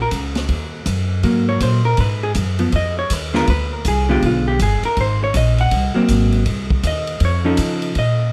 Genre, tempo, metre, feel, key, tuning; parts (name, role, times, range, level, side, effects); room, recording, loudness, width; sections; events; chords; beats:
jazz, small-group swing and bop; 161 BPM; 4/4; swing 65% on 8ths; Ab mixolydian; A4 = 441 Hz
vintage hollow-body jazz guitar; accompaniment; 0.0-8.3 s; D3 to Gb5; -21 LUFS; equal
upright bass; bass; 0.0-8.3 s; G1 to C#3; -21 LUFS; equal
swinging big-band drum kit; drums; 0.1-8.1 s; hi-hat, kick drum, ride cymbal, snare drum; -27 LUFS; equal
light reverb; dark, warm production; -18 LUFS; mono
0.0-8.3 A section
0.5 Ebm; 1.2 Ab9; 2.0 Ebmadd9; 3.5 Ddim7; 5.0 Ab9; 6.5 Cm; 7.2 Faug7
0.12 | 0.49 0.86 1.23 1.61 | 1.98 2.35 2.73 3.10 | 3.47 3.85 4.22 4.59 | 4.97 5.34 5.71 6.09 | 6.46 6.83 7.21 7.58 | 7.96